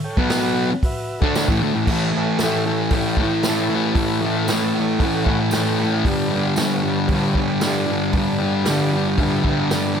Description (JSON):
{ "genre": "garage rock duo or trio", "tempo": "115 BPM", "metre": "4/4", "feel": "straight", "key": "A mixolydian", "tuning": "A4 = 440 Hz", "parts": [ { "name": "combo organ", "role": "sustained chords", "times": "0.0-10.0 s", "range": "F#4 to G5", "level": "-29 LUFS", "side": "right 1 dB", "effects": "none" }, { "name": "fuzz guitar", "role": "riff", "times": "0.2-10.0 s", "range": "G2 to D4", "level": "-18 LUFS", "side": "equal", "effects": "distortion" }, { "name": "vintage drum kit", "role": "drums", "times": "0.2-9.8 s", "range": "crash cymbal, hi-hat, kick drum, snare drum", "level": "-24 LUFS", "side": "equal", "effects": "none" }, { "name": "tambourine", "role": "percussion", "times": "0.3-9.8 s", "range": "none", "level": "-34 LUFS", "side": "right 2 dB", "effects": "none" } ], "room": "light reverb, studio ambience", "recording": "none", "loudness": "-17 LUFS", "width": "side -7 dB against mid", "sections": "0.0-1.9 A section; 1.9-10.0 B section", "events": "transistor combo organ fill 1.1-1.9", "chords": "0.2 B5; 1.2 A; 6.1 G", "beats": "0.31 0.83 1.35 | 1.88 2.40 2.92 3.45 | 3.97 4.49 5.02 5.54 | 6.06 6.58 7.11 7.63 | 8.15 8.68 9.20 9.72" }